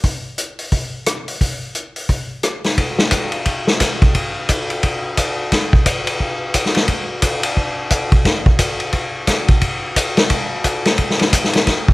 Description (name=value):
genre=jazz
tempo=176 BPM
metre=4/4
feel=swing 62% on 8ths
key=none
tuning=none
part: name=vintage drum kit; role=drums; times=0.0-11.9 s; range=hi-hat, kick drum, ride cymbal, rim click, snare drum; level=-15 LUFS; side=equal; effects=none
room=little or no reverb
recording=none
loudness=-15 LUFS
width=side -21 dB against mid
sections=0.0-2.8 A section; 2.8-11.9 B section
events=none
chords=none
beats=| 0.04 0.38 0.73 1.07 | 1.41 1.75 2.10 2.44 | 2.78 3.12 3.47 3.81 | 4.15 4.49 4.83 5.18 | 5.52 5.86 6.20 6.54 | 6.89 7.23 7.57 7.91 | 8.25 8.60 8.94 9.28 | 9.62 9.96 10.30 10.65 | 10.99 11.33 11.67